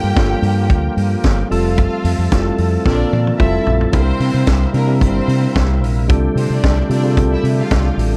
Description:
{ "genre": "disco", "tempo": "111 BPM", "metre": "4/4", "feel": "straight", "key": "unclear", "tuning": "A4 = 442 Hz", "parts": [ { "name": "clear studio violin section", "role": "second line", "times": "0.0-8.0 s", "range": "Bb3 to G5", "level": "-28 LUFS", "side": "equal", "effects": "none" }, { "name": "tine electric piano", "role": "accompaniment", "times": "0.0-8.2 s", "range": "G3 to Bb4", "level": "-22 LUFS", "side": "equal", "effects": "none" }, { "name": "overdriven tonewheel organ", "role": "sustained chords", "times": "0.0-8.2 s", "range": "C3 to A4", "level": "-28 LUFS", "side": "equal", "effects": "chorus vibrato" }, { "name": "fingered electric bass", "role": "bass", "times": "0.0-8.2 s", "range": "F1 to C3", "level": "-19 LUFS", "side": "equal", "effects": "none" }, { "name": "vintage drum kit", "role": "drums", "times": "0.2-8.1 s", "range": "hi-hat, kick drum, snare drum, toms", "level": "-21 LUFS", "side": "equal", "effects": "none" } ], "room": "little or no reverb", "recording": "dark, warm production", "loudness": "-15 LUFS", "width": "mono", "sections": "0.0-3.9 A section; 3.9-8.2 B section", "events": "drum fill 2.9-3.9", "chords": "0.0 Gm7; 1.5 Fmaj7; 2.9 Bbmaj7; 3.4 Fmaj7; 3.9 C7; 6.1 F69/C" }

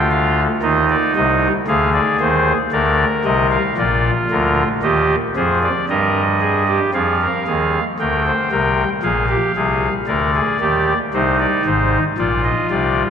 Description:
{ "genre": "classical, baroque-style 3-part fugue for pipe organ", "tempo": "57 BPM", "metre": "4/4", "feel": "straight", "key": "unclear", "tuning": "A4 = 439 Hz", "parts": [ { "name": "pipe organ, soft reed", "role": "solo", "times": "0.0-13.1 s", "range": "Ab1 to G5", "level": "-14 LUFS", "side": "equal", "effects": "none" } ], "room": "wet cathedral reverb, RT60 5.3 s", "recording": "in a vast, echoing space", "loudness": "-14 LUFS", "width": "side -7 dB against mid", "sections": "0.0-6.9 A section; 6.9-13.1 B section", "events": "none", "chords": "0.0 N.C.; 0.6 Fm7 (rootless); 2.7 Bb; 4.8 Eb; 6.9 Fm; 9.0 Bb7; 11.1 Cm" }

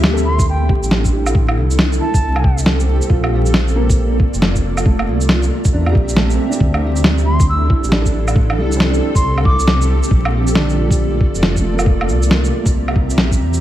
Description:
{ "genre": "future garage", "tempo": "137 BPM", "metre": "4/4", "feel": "swing 62% on 16ths", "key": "unclear", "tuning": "A4 = 442 Hz", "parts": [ { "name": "felt-muted upright piano", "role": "accompaniment", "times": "0.0-13.6 s", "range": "D3 to A4", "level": "-24 LUFS", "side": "right 2 dB", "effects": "sidechain pumping, dub echo" }, { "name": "granular cloud pad", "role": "sustained chords", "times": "0.0-13.6 s", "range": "A3 to Bb5", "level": "-22 LUFS", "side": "equal", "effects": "built-in reverb, sidechain pumping" }, { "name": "dark detuned saw bass", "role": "bass", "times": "0.0-13.6 s", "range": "F1 to E2", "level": "-17 LUFS", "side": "equal", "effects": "sidechain pumping" }, { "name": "electronic snare drum, shaker and woodblock", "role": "drums", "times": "0.0-13.6 s", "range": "none", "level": "-18 LUFS", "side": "equal", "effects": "none" }, { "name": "wooden flute", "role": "melody", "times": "0.3-2.6, 7.3-9.8 s", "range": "G5 to E6", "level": "-24 LUFS", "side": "equal", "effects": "dub echo" }, { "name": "electronic kick drum", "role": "drums", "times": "0.4-13.4 s", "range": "none", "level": "-15 LUFS", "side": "equal", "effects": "none" } ], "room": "digital ambience", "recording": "vinyl crackle", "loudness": "-13 LUFS", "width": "side -13 dB against mid", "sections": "0.0-13.6 A section", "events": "none", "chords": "0.0 Dsus2; 1.4 Am7; 3.1 Bbmaj7; 4.9 C7; 6.6 Am7; 10.1 Bbmaj7; 11.9 C7" }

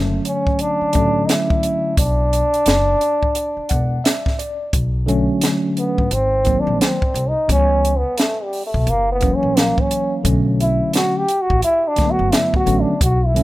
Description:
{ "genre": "hip hop, jazz-hop", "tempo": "87 BPM", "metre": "4/4", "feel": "swing 63% on 16ths", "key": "B minor", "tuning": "A4 = 441 Hz", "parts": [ { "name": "tine electric piano", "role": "accompaniment", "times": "0.0-13.4 s", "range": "C#3 to F#5", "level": "-21 LUFS", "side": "equal", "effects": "medium stereo tremolo" }, { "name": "upright bass", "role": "bass", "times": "0.0-13.4 s", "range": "E1 to C#2", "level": "-20 LUFS", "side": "equal", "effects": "none" }, { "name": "trombone with cup mute", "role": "melody", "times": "0.3-13.4 s", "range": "G3 to G4", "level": "-19 LUFS", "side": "equal", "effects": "none" }, { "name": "compact cocktail drum kit", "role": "drums", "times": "0.3-13.4 s", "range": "hi-hat, kick drum, snare drum", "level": "-20 LUFS", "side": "equal", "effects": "none" } ], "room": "small room ambience", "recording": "rough home demo mix", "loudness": "-15 LUFS", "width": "side -17 dB against mid", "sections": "0.0-4.7 A section; 4.7-13.4 B section", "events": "tine electric piano fill 3.4-4.7; trombone solo 4.7-13.4", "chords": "0.0 Bm9 (rootless); 4.7 Bm9; 6.1 G#7; 7.5 C#m7b5; 8.9 F#7; 10.2 Bm9" }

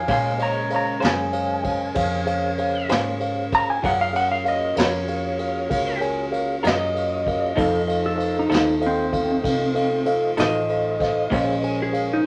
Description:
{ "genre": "slow blues", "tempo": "64 BPM (dotted quarters)", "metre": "12/8", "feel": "straight", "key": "unclear", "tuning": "A4 = 441 Hz", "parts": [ { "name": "clean lap steel guitar", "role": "melody", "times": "0.0-12.3 s", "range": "C4 to Bb5", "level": "-26 LUFS", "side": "equal", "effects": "none" }, { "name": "mellow brass ensemble", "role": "sustained chords", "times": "0.0-12.3 s", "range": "Db3 to Gb4", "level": "-37 LUFS", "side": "equal", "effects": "none" }, { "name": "mellow tonewheel organ", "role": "sustained chords", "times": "0.0-12.3 s", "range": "Db4 to G5", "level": "-35 LUFS", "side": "equal", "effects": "slow rotary speaker" }, { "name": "vintage muted fingered electric bass", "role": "bass", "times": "0.0-12.2 s", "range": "A1 to Bb2", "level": "-33 LUFS", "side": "equal", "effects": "none" }, { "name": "electric guitar through a small old amp", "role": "accompaniment", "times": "0.1-11.5 s", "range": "F3 to C5", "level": "-30 LUFS", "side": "equal", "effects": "tremolo" }, { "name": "mellow tine electric piano", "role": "accompaniment", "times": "0.1-12.2 s", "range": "Ab4 to Ab5", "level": "-27 LUFS", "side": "equal", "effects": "none" }, { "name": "vintage brush drum kit", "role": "drums", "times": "0.1-12.1 s", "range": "kick drum, ride cymbal, snare drum", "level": "-31 LUFS", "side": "equal", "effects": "none" } ], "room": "moderate club reverb, RT60 0.7 s", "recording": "none", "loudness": "-22 LUFS", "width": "mono", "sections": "0.0-12.3 A section", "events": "electric slide guitar solo 0.0-12.3", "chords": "0.0 Ebm9 (rootless); 3.8 Gbmaj7; 7.6 F7; 11.3 Bbm9" }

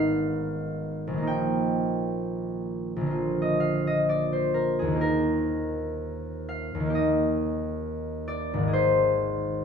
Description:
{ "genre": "classical, solo harp piece", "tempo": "59-69 BPM", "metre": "4/4", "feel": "rubato", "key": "Eb major", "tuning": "A4 = 441 Hz", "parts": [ { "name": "concert harp", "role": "solo", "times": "0.0-9.6 s", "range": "Ab1 to G5", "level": "-24 LUFS", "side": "equal", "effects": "none" } ], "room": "light reverb", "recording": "close, detailed microphones", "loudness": "-24 LUFS", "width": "side -6 dB against mid", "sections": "0.0-9.6 A section", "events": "none", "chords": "0.0 Abm; 1.3 Eb/Bb; 3.1 Bb; 5.0 Eb; 8.7 Ab" }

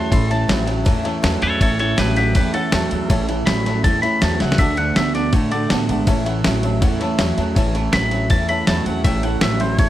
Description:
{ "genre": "rockabilly", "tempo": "161 BPM", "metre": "4/4", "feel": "straight", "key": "A major", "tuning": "A4 = 442 Hz", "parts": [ { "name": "twangy electric guitar", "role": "melody", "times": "0.0-5.7, 7.9-9.9 s", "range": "G4 to C6", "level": "-23 LUFS", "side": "left 1 dB", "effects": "phaser, tape echo" }, { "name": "picked steel-string acoustic guitar", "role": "accompaniment", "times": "0.0-9.9 s", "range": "A2 to F#4", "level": "-27 LUFS", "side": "left 3 dB", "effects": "none" }, { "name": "warm upright piano", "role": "accompaniment", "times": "0.0-9.9 s", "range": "C#5 to B5", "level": "-29 LUFS", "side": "left 3 dB", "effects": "none" }, { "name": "electric guitar through a small old amp", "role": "riff", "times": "0.0-9.9 s", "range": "A2 to B3", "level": "-23 LUFS", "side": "right 4 dB", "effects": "wide subtle chorus" }, { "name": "upright bass", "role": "bass", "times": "0.0-9.9 s", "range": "G#1 to A2", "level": "-22 LUFS", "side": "equal", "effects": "none" }, { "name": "dusty soul sampler-style drum kit", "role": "drums", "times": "0.1-9.9 s", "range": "kick drum, ride cymbal, snare drum", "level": "-20 LUFS", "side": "equal", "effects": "none" } ], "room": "light reverb", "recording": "none", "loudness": "-16 LUFS", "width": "side -13 dB against mid", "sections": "0.0-9.9 A section", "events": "clean electric guitar solo 0.0-9.9; drum fill 4.4", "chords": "0.0 A; 4.6 D; 6.1 A" }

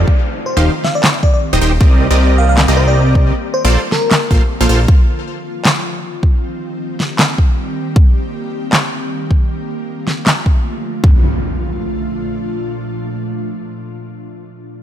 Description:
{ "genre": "future bass", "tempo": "156 BPM", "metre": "4/4", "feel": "swing 56% on 16ths, half-time", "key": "Bb major", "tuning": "A4 = 440 Hz", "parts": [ { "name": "bell-like FM electric piano", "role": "melody", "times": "0.0-4.5 s", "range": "Bb4 to F5", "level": "-20 LUFS", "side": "left 1 dB", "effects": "chorus, tremolo, sidechain pumping, tape echo" }, { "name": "ethereal airy pad", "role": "sustained chords", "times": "0.0-14.1 s", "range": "Bb2 to G4", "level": "-24 LUFS", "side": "equal", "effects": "ensemble chorus, built-in reverb, sidechain pumping" }, { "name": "supersaw stab", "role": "riff", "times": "0.0-4.8 s", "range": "Eb3 to G5", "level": "-18 LUFS", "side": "right 1 dB", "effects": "sidechain pumping, ping-pong delay" }, { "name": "fat analog bass", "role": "bass", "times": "0.0-4.9 s", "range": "Eb1 to C2", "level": "-12 LUFS", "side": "equal", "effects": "sidechain pumping" }, { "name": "downlifter and impact", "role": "sound effects", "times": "0.0-1.8, 11.0-14.2 s", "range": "none", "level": "-23 LUFS", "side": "equal", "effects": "none" }, { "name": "electronic kick drum", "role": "drums", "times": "0.1-11.1 s", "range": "none", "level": "-11 LUFS", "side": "equal", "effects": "none" }, { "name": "electronic snare drum and handclaps", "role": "drums", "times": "0.8-10.4 s", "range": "none", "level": "-15 LUFS", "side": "equal", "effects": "none" } ], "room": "light reverb, digital ambience", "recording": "none", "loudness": "-12 LUFS", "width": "side -10 dB against mid", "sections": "0.0-11.0 A section; 11.0-14.1 B section", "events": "none", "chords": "0.1 Eb6; 1.8 Cm7; 3.3 Bbmaj7; 4.9 F5; 6.2 Eb6; 9.5 Bbmaj7" }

